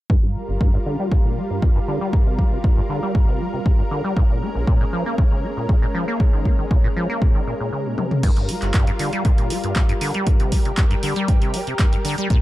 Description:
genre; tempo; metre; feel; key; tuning
acid house; 118 BPM; 4/4; straight; G phrygian; A4 = 440 Hz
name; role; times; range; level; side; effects
lush unison pad; sustained chords; 0.1-12.4 s; G3 to Bb4; -28 LUFS; equal; chorus, sidechain pumping
acid bass, saw; riff; 0.1-12.4 s; G1 to Bb3; -24 LUFS; equal; wide subtle chorus, tape echo
electronic kick drum; drums; 0.1-12.4 s; none; -17 LUFS; equal; none
punchy analog drum machine; drums; 8.0-12.4 s; crash cymbal, handclaps, hi-hat, toms; -27 LUFS; left 1 dB; none
room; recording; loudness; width
digital ambience; dark, warm production; -17 LUFS; side -16 dB against mid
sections
0.1-8.2 A section; 8.2-12.4 B section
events
filter sweep on acid bass 0.1-8.2; break 7.7-8.2; drum fill 8.0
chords
0.1 Gm7; 4.2 Bbm7; 8.2 Gm7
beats
| 0.10 0.61 1.12 1.62 | 2.13 2.64 3.15 3.66 | 4.17 4.67 5.18 5.69 | 6.20 6.71 7.22 7.73 | 8.23 8.74 9.25 9.76 | 10.27 10.78 11.29 11.79 | 12.30

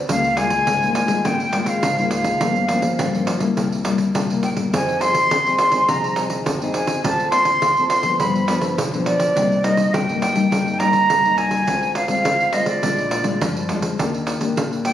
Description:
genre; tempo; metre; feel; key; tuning
samba and choro; 104 BPM; 4/4; straight; C minor; A4 = 438 Hz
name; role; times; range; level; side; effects
nylon-string guitar; accompaniment; 0.0-14.9 s; G2 to A4; -22 LUFS; left 3 dB; none
silver concert flute; melody; 0.1-14.9 s; D5 to C6; -19 LUFS; equal; plate reverb
upright bass; bass; 0.1-14.9 s; G1 to G2; -31 LUFS; equal; none
pandeiro; percussion; 0.1-14.9 s; none; -24 LUFS; right 2 dB; none
room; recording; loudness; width
moderate studio reverb, RT60 0.7 s; recorded on a phone in the room, studio reverb; -17 LUFS; side -11 dB against mid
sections
0.0-14.0 A section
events
none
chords
0.1 Db6; 2.4 Gm7b5; 3.6 C7; 4.7 Fm7; 7.0 Dm7; 8.2 G7; 9.4 Cm7; 11.7 Dm7b5; 12.8 Bb7; 14.0 Ebmaj7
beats
| 0.09 0.67 1.25 1.83 | 2.41 2.99 3.57 4.15 | 4.73 5.30 5.88 6.46 | 7.04 7.62 8.20 8.78 | 9.36 9.93 10.51 11.09 | 11.67 12.25 12.83 13.41 | 13.99 14.57

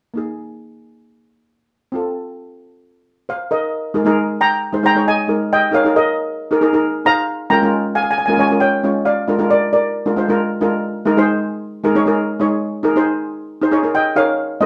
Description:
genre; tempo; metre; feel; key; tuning
calypso; 135 BPM; 4/4; swing 53% on 16ths; Ab major; A4 = 441 Hz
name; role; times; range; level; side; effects
steel pan; accompaniment; 0.1-14.7 s; Ab3 to Db5; -19 LUFS; equal; none
steel pan; melody; 3.3-10.4, 13.9-14.7 s; Bb4 to Bb5; -18 LUFS; equal; none
room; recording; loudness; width
wet studio reverb, RT60 0.6 s; band playing live in one room; -17 LUFS; mono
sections
0.2-3.7 A section; 3.7-14.7 B section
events
none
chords
0.2 Absus2; 1.9 F; 3.7 Ebsus4/Ab; 5.5 Absus2; 7.3 Bbm/Ab; 9.1 Bb7/Ab; 10.8 Eb7sus4/Ab; 12.6 Absus2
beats
| 0.15 0.60 1.05 1.50 | 1.94 2.39 2.83 3.28 | 3.73 4.17 4.62 5.06 | 5.51 5.95 6.40 6.84 | 7.29 7.73 8.17 8.62 | 9.06 9.51 9.95 10.40 | 10.84 11.28 11.73 12.17 | 12.62 13.06 13.50 13.95 | 14.39

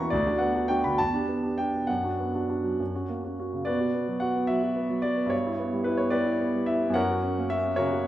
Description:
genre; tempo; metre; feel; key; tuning
classical, romantic character piece for solo piano; 65-76 BPM (dotted quarters); 6/8; rubato; B minor; A4 = 439 Hz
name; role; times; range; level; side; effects
clear concert grand piano; solo; 0.0-8.1 s; D2 to C#6; -24 LUFS; equal; none
room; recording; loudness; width
wet recital hall reverb, RT60 1.6 s; none; -24 LUFS; side -13 dB against mid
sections
0.0-3.7 A section; 3.7-8.1 B section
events
none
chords
0.1 Bm/D; 1.0 Em7; 1.9 Bm/F#; 2.8 F#; 3.7 Bm; 5.3 Em/G; 7.0 F#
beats
| 0.11 0.98 | 1.88 2.80 | 3.69 4.50 | 5.33 6.14 | 6.97 7.77

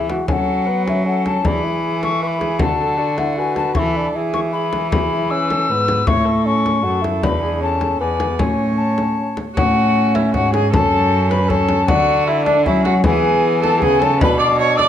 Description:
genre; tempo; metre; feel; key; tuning
classical, renaissance-style consort dance; 155 BPM; 3/4; straight; A major; A4 = 441 Hz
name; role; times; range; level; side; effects
mellow hollow alto recorder; melody; 0.0-14.9 s; D5 to E6; -20 LUFS; left 6 dB; none
mellow bassoon; accompaniment; 0.0-14.9 s; B3 to F#4; -22 LUFS; left 2 dB; none
rich cello; bass; 0.0-14.9 s; E2 to F#3; -20 LUFS; right 2 dB; none
frame drum; percussion; 0.1-14.9 s; none; -22 LUFS; left 2 dB; none
rich viola; second line; 0.3-14.9 s; D4 to D5; -23 LUFS; right 6 dB; none
room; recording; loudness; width
moderate recital hall reverb, RT60 1.3 s; none; -15 LUFS; side -10 dB against mid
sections
0.3-9.6 A section; 9.6-14.9 B section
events
none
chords
0.3 F#m; 1.4 E; 2.6 D; 3.8 Esus4; 4.2 E; 6.1 A; 7.2 E7sus4; 8.0 E7; 8.4 A; 10.7 F#m; 11.9 D; 13.1 E; 14.2 Bm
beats
| 0.29 0.67 1.06 | 1.45 1.84 2.22 | 2.61 3.00 3.38 | 3.77 4.15 4.54 | 4.92 5.31 5.70 | 6.08 6.46 6.85 | 7.23 7.62 8.01 | 8.40 8.79 9.18 | 9.57 9.96 10.35 | 10.74 11.12 11.51 | 11.90 12.28 12.67 | 13.06 13.44 13.83 | 14.21 14.60

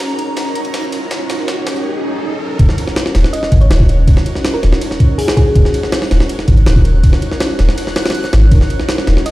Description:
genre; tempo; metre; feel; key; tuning
drum and bass, jungle; 162 BPM; 4/4; straight; Eb minor; A4 = 441 Hz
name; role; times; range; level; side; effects
ethereal airy pad; sustained chords; 0.0-9.3 s; Db4 to Db5; -22 LUFS; equal; ensemble chorus, built-in reverb, vintage 12-bit sampler grit
breakbeat sampler-style drum kit; drums; 0.0-1.8 s; hi-hat, snare drum; -32 LUFS; equal; none
jungle sampler-style drum kit; drums; 0.0-9.3 s; hi-hat, kick drum, ride cymbal, snare drum; -14 LUFS; equal; high-pass filter on snare, small room ambience, high-pass filter on cymbals, high-pass filter on kick, high-pass filter on hats
riser and swell; sound effects; 0.0-2.6 s; none; -24 LUFS; right 1 dB; none
backwards swelling texture; texture; 0.0-9.3 s; Bb5 to Gb6; -31 LUFS; equal; built-in reverb
soft dub sub bass; bass; 2.6-9.2 s; Eb1 to Ab1; -10 LUFS; equal; none
thumb-piano-like synth pluck; melody; 3.3-5.7, 9.3 s; Ab4 to Eb5; -22 LUFS; left 1 dB; chorus, dub echo
room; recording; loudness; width
little or no reverb; played on a big sound system in a bare room, large studio reverb; -11 LUFS; side -17 dB against mid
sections
0.0-2.6 A section; 2.6-9.3 B section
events
build-up 0.0-2.6; drum fill 0.0-1.9; riser 0.0-2.6; swell 1.9-2.6; drop 2.6-9.3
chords
0.0 Ebm7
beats
0.00 0.37 0.74 | 1.11 1.48 1.85 2.22 | 2.59 2.96 3.33 3.70 | 4.07 4.44 4.81 5.18 | 5.55 5.92 6.29 6.66 | 7.04 7.41 7.78 8.15 | 8.52 8.89 9.26

